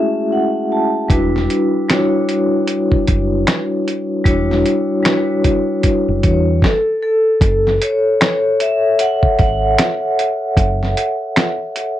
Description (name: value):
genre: lo-fi hip hop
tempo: 76 BPM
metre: 4/4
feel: swing 62% on 16ths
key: F# phrygian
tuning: A4 = 440 Hz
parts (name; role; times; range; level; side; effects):
- vibraphone with medium hard mallets; accompaniment; 0.0-12.0 s; G3 to A5; -15 LUFS; left 1 dB; cassette tape
- deep dub fingered electric bass; bass; 1.1-10.9 s; E1 to E2; -19 LUFS; equal; none
- dusty soul sampler-style drum kit; drums; 1.1-12.0 s; finger snaps, hi-hat, kick drum, snare drum; -16 LUFS; equal; vintage 12-bit sampler grit
room: light reverb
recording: cassette tape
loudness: -13 LUFS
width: side -12 dB against mid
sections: 0.0-7.4 A section; 7.4-12.0 B section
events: vibraphone fill 0.0-1.1; vibraphone solo 7.4-12.0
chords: 0.0 F#m9; 1.1 Em9; 7.4 F#5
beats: 0.31 | 1.10 1.89 2.67 3.46 | 4.25 5.04 5.83 6.62 | 7.41 8.20 8.99 9.78 | 10.57 11.36